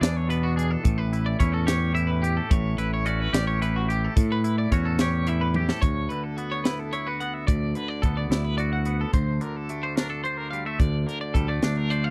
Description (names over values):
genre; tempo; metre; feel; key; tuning
math rock and midwest emo; 72 BPM (dotted quarters); 6/8; straight; D major; A4 = 440 Hz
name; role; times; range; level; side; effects
twangy electric guitar; accompaniment; 0.0-12.1 s; D2 to C5; -33 LUFS; equal; none
twangy electric guitar; arpeggios; 0.0-12.1 s; F#4 to F#5; -34 LUFS; equal; tremolo
growling fingered electric bass; bass; 0.0-12.1 s; A1 to A2; -27 LUFS; equal; overdrive
crisp fusion drum kit; drums; 0.0-12.0 s; hi-hat, kick drum, snare drum, toms; -26 LUFS; equal; none
room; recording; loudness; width
little or no reverb; dry, close 1970s-style studio recording; -25 LUFS; mono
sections
0.0-5.8 A section; 5.8-12.1 B section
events
drum fill 5.5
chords
0.0 E9; 0.9 A9; 5.8 D69; 9.1 Bbmaj9/D